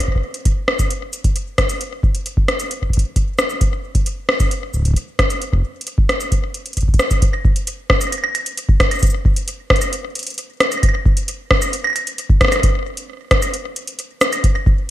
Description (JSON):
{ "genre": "IDM", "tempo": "133 BPM", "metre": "4/4", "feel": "straight", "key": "none", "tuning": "none", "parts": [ { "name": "booming analog drum machine", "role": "drums", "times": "0.0-14.6 s", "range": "hi-hat, rim click, shaker, woodblock", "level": "-19 LUFS", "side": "equal", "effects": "gated reverb, ping-pong delay" }, { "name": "electronic kick drum", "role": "drums", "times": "0.0-14.8 s", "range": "none", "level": "-16 LUFS", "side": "equal", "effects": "none" } ], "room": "light reverb", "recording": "bright 1980s-style digital production", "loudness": "-16 LUFS", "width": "side -14 dB against mid", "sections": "0.0-7.2 A section; 7.2-14.9 B section", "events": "none", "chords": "none" }